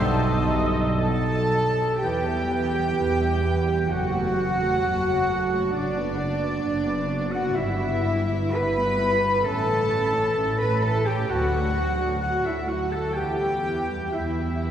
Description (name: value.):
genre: cinematic.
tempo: 65 BPM.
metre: 4/4.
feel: uneven beats, rubato.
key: E dorian.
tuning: A4 = 440 Hz.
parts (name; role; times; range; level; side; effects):
warm symphonic violin section; melody; 0.0-14.7 s; G4 to A5; -39 LUFS; left 2 dB; none.
dark clarinet; second line; 0.0-14.7 s; D4 to B4; -35 LUFS; equal; none.
warm oboe; second line; 0.0-14.7 s; A4 to B5; -33 LUFS; equal; none.
warm symphonic violin section; second line; 0.0-14.7 s; D#4 to B5; -33 LUFS; left 1 dB; none.
dark symphonic viola section; accompaniment; 0.0-14.7 s; E3 to D#5; -32 LUFS; right 1 dB; none.
mellow French horn section; sustained chords; 0.0-1.7 s; F#3 to D#4; -31 LUFS; left 3 dB; none.
warm symphonic cello section; bass; 0.0-14.7 s; B2 to B4; -26 LUFS; right 1 dB; none.
warm symphonic double bass section; bass; 0.0-14.7 s; F#1 to E2; -27 LUFS; right 1 dB; none.
mellow flute section; second line; 1.0-14.7 s; D5 to B5; -31 LUFS; left 1 dB; none.
room: wet cathedral reverb, RT60 4.3 s.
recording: heard from further back in the room.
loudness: -21 LUFS.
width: side -9 dB against mid.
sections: 0.0-2.0 A section; 2.0-14.7 B section.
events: none.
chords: 0.0 B7; 2.0 Em; 3.9 F#m; 5.8 Bm/F#; 7.6 Em/G; 9.5 A; 11.3 D; 13.2 Em.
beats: 1.01 | 2.01 2.96 3.91 4.84 | 5.75 6.65 7.55 8.53 | 9.45 10.36 11.29 12.22 | 13.15 14.12.